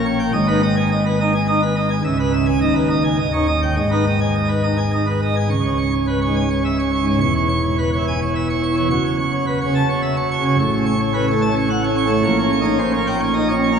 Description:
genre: classical, organ toccata.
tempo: 106 BPM.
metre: 3/4.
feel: straight.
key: G# minor, C# minor from 5.5 s.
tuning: A4 = 435 Hz.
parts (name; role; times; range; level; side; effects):
pipe organ, plenum; solo; 0.0-13.8 s; C#1 to C#6; -16 LUFS; right 1 dB; none.
room: wet cathedral reverb, RT60 4.1 s.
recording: none.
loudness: -16 LUFS.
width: side -7 dB against mid.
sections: 0.0-5.5 A section; 5.5-13.8 B section.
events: none.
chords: 0.3 G#m; 2.0 C#m7; 2.6 G#m/D#; 3.2 D#7; 3.8 G#m; 5.5 C#m; 7.2 C#m/E; 8.9 F#m7; 10.6 F#m/A; 12.2 Eb7/Bb.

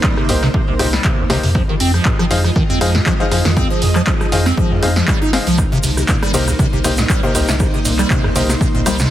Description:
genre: acid house.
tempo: 119 BPM.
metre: 4/4.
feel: swing 54% on 16ths.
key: C minor.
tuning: A4 = 440 Hz.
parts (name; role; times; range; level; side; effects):
string machine, full ensemble; sustained chords; 0.0-9.1 s; Ab3 to Eb5; -23 LUFS; equal; ensemble chorus, sidechain pumping.
liquid acid bass; riff; 0.0-9.1 s; C2 to F4; -19 LUFS; equal; phaser, wide subtle chorus, dub echo.
electronic kick drum; drums; 0.0-8.7 s; none; -18 LUFS; equal; none.
punchy analog drum machine; drums; 0.0-9.1 s; handclaps, hi-hat, ride cymbal, rim click, snare drum; -21 LUFS; right 1 dB; none.
bright grand piano; stabs; 0.3-8.9 s; Bb3 to F5; -23 LUFS; left 2 dB; dub echo.
warm sub bass; bass; 0.3-9.1 s; F1 to F2; -18 LUFS; equal; sidechain pumping.
tube shaker; percussion; 5.6-9.1 s; none; -26 LUFS; right 2 dB; none.
room: little or no reverb.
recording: heavily compressed radio sound.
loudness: -13 LUFS.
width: side -12 dB against mid.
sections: 0.0-9.1 A section.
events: none.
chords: 0.0 Cm7; 1.6 Fm7; 5.6 Cm7.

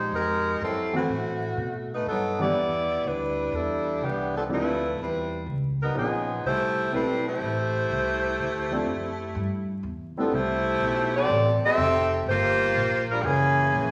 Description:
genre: jazz, big band swing.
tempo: 124 BPM.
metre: 4/4.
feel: swing 68% on 8ths.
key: C major.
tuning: A4 = 438 Hz.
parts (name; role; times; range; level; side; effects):
dark saxophone section; melody; 0.0-13.9 s; E3 to E5; -27 LUFS; equal; none.
warm grand piano; accompaniment; 0.0-10.3 s; E3 to A4; -33 LUFS; equal; none.
upright bass; bass; 0.0-13.9 s; F1 to B2; -34 LUFS; equal; none.
room: wet large studio reverb, RT60 1.3 s.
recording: vinyl crackle.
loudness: -26 LUFS.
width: mono.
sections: 0.0-10.3 A section; 10.3-13.9 B section.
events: none.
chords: 0.0 Fm11; 0.6 F#m7b5; 1.6 B7b13; 2.6 Em7; 4.5 Dm11; 5.5 Db9; 6.4 C6; 8.4 Dm7; 9.4 Gsus2; 10.3 C6; 12.3 Gm7; 13.2 F#9.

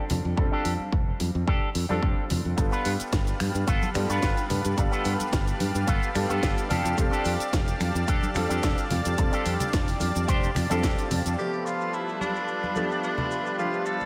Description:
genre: nu-disco, nu disco.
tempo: 109 BPM.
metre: 4/4.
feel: swing 53% on 16ths.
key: G mixolydian.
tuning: A4 = 441 Hz.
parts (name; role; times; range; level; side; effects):
warm grand piano; accompaniment; 0.0-14.1 s; F3 to A4; -35 LUFS; equal; lush chorus, low-pass filter, analog delay.
electric guitar with an envelope filter; riff; 0.0-11.0 s; B3 to C5; -35 LUFS; equal; analog chorus, analog delay.
modern bright fingered electric bass; bass; 0.1-11.3 s; F1 to G2; -30 LUFS; equal; none.
house drum kit; drums; 0.1-11.4 s; cabasa, finger snaps, hi-hat, snare drum; -36 LUFS; equal; none.
congas and maracas; percussion; 0.1-14.1 s; none; -38 LUFS; equal; none.
electronic kick drum; drums; 0.4-11.0 s; none; -29 LUFS; equal; none.
lush unison pad; sustained chords; 2.6-14.1 s; G3 to A5; -34 LUFS; equal; chorus, sidechain pumping.
raspy tenor saxophone; melody; 11.4-14.1 s; D4 to A4; -32 LUFS; equal; tape echo.
room: moderate lush hall reverb, RT60 1.9 s.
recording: dreamy mix soaked in reverb.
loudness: -26 LUFS.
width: mono.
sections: 0.0-11.4 A section; 11.4-14.1 B section.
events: none.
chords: 0.0 F69; 2.6 G9; 6.7 F69; 11.4 G9.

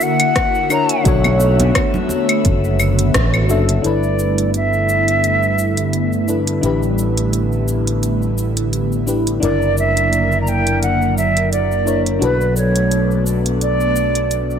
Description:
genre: sunset chillout.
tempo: 86 BPM.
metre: 4/4.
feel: swing 55% on 16ths.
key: G lydian.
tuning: A4 = 439 Hz.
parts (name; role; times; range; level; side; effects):
wooden flute; melody; 0.0-14.6 s; B4 to A#5; -19 LUFS; right 1 dB; digital delay.
mellow FM electric piano; accompaniment; 0.0-14.6 s; D4 to E5; -22 LUFS; moving between left 8 dB and right 2 dB; chorus, auto-pan, ping-pong delay.
airy breathy pad; sustained chords; 0.0-14.6 s; D3 to E5; -21 LUFS; right 1 dB; chorus, phaser.
deep house drum kit; drums; 0.0-14.6 s; cabasa, claves, hi-hat, rim click; -22 LUFS; left 1 dB; none.
electronic kick drum; drums; 0.4-3.3 s; none; -19 LUFS; equal; none.
fretless electric bass; bass; 1.1-14.6 s; F#1 to B1; -18 LUFS; equal; none.
congas; percussion; 1.2-2.2 s; none; -24 LUFS; right 1 dB; none.
room: moderate plate reverb, RT60 2.1 s.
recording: none.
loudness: -14 LUFS.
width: side -8 dB against mid.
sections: 0.0-3.8 A section; 3.8-14.6 B section.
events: band accent 3.1-3.5.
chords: 0.0 F#7b13; 1.1 Bm9; 3.8 G69; 6.6 A9sus4; 9.4 F#7b13; 12.2 Bm9.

